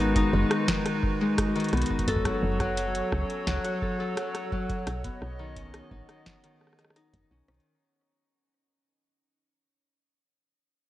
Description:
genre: IDM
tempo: 86 BPM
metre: 4/4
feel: straight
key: unclear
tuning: A4 = 440 Hz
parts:
  - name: warbly tape-like pad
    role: sustained chords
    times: 0.0-7.6 s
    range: F#3 to D#5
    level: -30 LUFS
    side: equal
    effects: chorus, built-in reverb, shimmer reverb
  - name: Celtic harp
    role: arpeggios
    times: 0.0-10.2 s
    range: D#3 to A4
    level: -30 LUFS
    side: left 2 dB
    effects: digital delay, shimmer reverb
  - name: woody FM bass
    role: bass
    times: 0.0-7.6 s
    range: F#1 to C#2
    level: -29 LUFS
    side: equal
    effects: none
  - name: electro analog drum machine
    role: drums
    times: 0.2-7.7 s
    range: hi-hat, rim click, snare drum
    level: -32 LUFS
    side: equal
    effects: studio reverb, ping-pong delay
  - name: electronic kick drum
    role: drums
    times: 0.2-7.3 s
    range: none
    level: -31 LUFS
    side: equal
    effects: studio reverb
room: light reverb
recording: worn, warbling old tape, cassette tape, warbly pitch drift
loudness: -25 LUFS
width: side -14 dB against mid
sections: 0.0-7.7 A section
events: fade-out 0.2-7.7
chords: 0.0 G#m7; 2.1 F#m

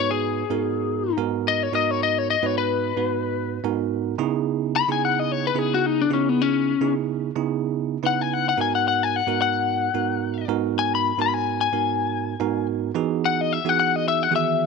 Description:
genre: blues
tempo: 110 BPM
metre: 4/4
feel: swing 55% on 16ths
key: G# minor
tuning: A4 = 440 Hz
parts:
  - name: lightly driven lead guitar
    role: melody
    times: 0.0-14.7 s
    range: B3 to B5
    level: -22 LUFS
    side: left 10 dB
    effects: none
  - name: bell-like tine electric piano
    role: accompaniment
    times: 0.0-14.7 s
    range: G#2 to B4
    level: -24 LUFS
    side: right 11 dB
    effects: none
room: light reverb, digital ambience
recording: 1960s-style stereo with parts hard left and right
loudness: -20 LUFS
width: side -4 dB against mid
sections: 0.0-14.7 A section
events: lead electric guitar solo 0.0-14.7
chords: 0.0 G#m9; 4.2 C#m9; 8.6 G#m9; 13.0 Emaj7

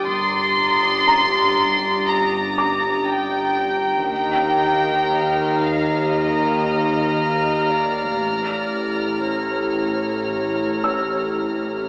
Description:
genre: cinematic, suspense film score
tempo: 59 BPM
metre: 4/4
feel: straight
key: unclear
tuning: A4 = 437 Hz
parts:
  - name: warm chamber violin section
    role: melody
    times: 0.0-11.9 s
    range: C#5 to C6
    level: -21 LUFS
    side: equal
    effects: none
  - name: glass harmonica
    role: sustained chords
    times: 0.0-11.9 s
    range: D4 to Bb5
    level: -22 LUFS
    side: equal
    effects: none
  - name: warm chamber cello section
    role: bass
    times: 0.0-11.9 s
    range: G2 to Eb3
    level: -29 LUFS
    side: equal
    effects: none
  - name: warm chamber double bass section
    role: bass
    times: 0.0-11.9 s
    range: G1 to Eb2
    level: -29 LUFS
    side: equal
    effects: none
  - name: punchy sub bass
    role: drone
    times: 0.0-11.9 s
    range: G1 to Eb2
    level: -36 LUFS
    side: equal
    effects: none
  - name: warm chamber violin section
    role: texture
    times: 0.0-11.9 s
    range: Bb5 to A6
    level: -27 LUFS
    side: equal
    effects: none
  - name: felt-muted upright piano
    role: texture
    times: 1.1-11.9 s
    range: C#5 to E6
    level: -25 LUFS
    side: equal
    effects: none
room: wet stone room reverb, RT60 1.4 s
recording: AM radio sound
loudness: -17 LUFS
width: side -29 dB against mid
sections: 0.0-11.9 A section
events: none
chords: 0.0 Gm; 4.1 Ebadd9; 8.2 A7

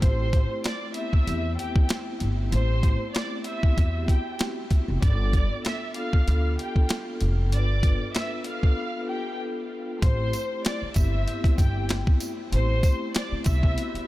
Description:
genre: hip hop, boom-bap hip-hop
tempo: 96 BPM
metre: 4/4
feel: swing 54% on 16ths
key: A minor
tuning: A4 = 440 Hz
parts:
  - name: warm studio violin section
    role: melody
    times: 0.0-14.1 s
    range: G4 to F6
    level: -32 LUFS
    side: equal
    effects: high-pass filter, low-pass filter, tape echo
  - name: vibraphone with soft mallets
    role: accompaniment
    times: 0.0-14.1 s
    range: A3 to B4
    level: -33 LUFS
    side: left 1 dB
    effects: high-pass filter, low-pass filter
  - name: upright bass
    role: bass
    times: 0.0-14.0 s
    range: F1 to E2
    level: -25 LUFS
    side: equal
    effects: none
  - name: boom bap sampler-style drum kit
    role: drums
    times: 0.0-14.1 s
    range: hi-hat, kick drum, snare drum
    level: -23 LUFS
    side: equal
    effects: none
  - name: tambourine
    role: percussion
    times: 10.3-13.6 s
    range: none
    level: -42 LUFS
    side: right 4 dB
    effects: none
room: studio ambience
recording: none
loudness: -22 LUFS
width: side -17 dB against mid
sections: 0.0-10.0 A section; 10.0-14.1 B section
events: break 8.8-10.0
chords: 0.0 Am7; 5.0 G7; 10.0 Am7

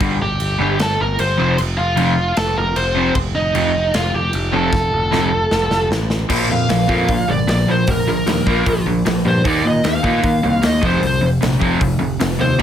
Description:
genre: punk rock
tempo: 152 BPM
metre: 4/4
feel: straight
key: Bb major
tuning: A4 = 440 Hz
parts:
  - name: crunchy overdriven guitar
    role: riff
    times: 0.0-12.6 s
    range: F2 to Eb4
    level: -17 LUFS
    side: equal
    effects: none
  - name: modern bright picked electric bass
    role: bass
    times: 0.0-12.6 s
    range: F1 to Eb3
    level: -22 LUFS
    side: equal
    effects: none
  - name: big rock drum kit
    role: drums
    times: 0.0-12.6 s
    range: crash cymbal, hi-hat, kick drum, snare drum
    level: -22 LUFS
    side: equal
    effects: none
  - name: high-gain lead guitar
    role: melody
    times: 0.2-12.6 s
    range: Eb4 to C6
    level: -19 LUFS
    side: equal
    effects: distortion
  - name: distorted electric guitar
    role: riff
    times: 12.6 s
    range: Bb2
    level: -17 LUFS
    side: equal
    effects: overdrive
room: light reverb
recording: none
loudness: -14 LUFS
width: side -10 dB against mid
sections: 0.0-6.3 A section; 6.3-12.6 B section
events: half time 0.0-6.3; drum fill 4.7-6.3; lead electric guitar solo 6.3-12.6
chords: 0.0 Gm; 1.4 F; 6.3 Bb5; 9.5 Eb5; 10.8 F5

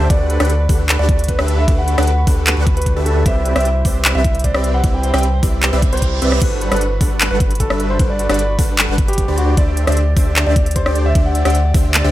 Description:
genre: future bass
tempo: 152 BPM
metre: 4/4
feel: half-time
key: G major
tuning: A4 = 441 Hz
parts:
  - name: warm grand piano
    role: melody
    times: 0.0-11.7 s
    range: F#4 to G5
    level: -23 LUFS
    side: equal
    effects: sidechain pumping, digital delay
  - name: concert harp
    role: arpeggios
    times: 0.0-12.1 s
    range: E4 to D5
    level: -28 LUFS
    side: equal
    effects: sidechain pumping, digital delay
  - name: supersaw stab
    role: riff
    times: 0.0-12.1 s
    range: D3 to G5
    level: -21 LUFS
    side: equal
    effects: sidechain pumping
  - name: saturated sub bass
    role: bass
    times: 0.0-12.1 s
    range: G1 to D2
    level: -17 LUFS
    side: equal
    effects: sidechain pumping
  - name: electronic kick drum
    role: drums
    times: 0.1-11.8 s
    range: none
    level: -16 LUFS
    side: equal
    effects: small room ambience
  - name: pop drum kit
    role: drums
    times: 0.1-12.0 s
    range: crash cymbal, handclaps, hi-hat, rim click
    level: -20 LUFS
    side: equal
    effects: small room ambience
  - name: reverse cymbal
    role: sound effects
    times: 5.8-6.4 s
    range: none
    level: -28 LUFS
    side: right 6 dB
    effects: none
room: little or no reverb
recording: none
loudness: -13 LUFS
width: side -14 dB against mid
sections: 0.0-12.1 A section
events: reverse cymbal 5.8-6.4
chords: 0.1 Gmaj9/D; 3.3 Cmaj9; 6.4 Gmaj9; 9.4 D7sus4

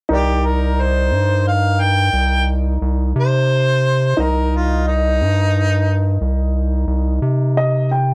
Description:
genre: blues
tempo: 59 BPM (dotted quarters)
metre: 12/8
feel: straight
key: C minor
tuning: A4 = 442 Hz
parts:
  - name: warm harmonica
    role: melody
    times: 0.1-6.2 s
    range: Eb4 to G5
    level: -21 LUFS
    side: equal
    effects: none
  - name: warm baby grand piano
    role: accompaniment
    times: 0.1-8.1 s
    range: Eb4 to G5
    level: -26 LUFS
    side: equal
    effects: none
  - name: round analog bass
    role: bass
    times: 0.1-8.1 s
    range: C2 to C3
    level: -19 LUFS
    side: equal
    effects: none
room: light reverb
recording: none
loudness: -17 LUFS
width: mono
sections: 0.1-8.1 A section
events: grand piano fill 7.2-8.1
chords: 0.1 Cm7

